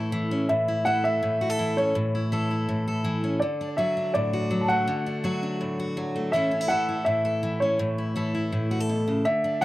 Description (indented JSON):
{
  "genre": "country",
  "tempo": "164 BPM",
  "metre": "4/4",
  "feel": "straight",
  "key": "A major",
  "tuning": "A4 = 440 Hz",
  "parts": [
    { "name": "dark upright piano", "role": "melody", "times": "0.0-9.6 s", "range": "C#5 to A5", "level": "-25 LUFS", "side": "equal", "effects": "tape echo" },
    { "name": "picked steel-string acoustic guitar", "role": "accompaniment", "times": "0.0-9.6 s", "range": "A2 to A4", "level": "-26 LUFS", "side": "equal", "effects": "none" }
  ],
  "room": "light reverb",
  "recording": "dry, close 1970s-style studio recording",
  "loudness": "-23 LUFS",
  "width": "side -17 dB against mid",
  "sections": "0.5-9.6 A section",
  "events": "none",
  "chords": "0.5 A; 3.4 D; 6.3 A"
}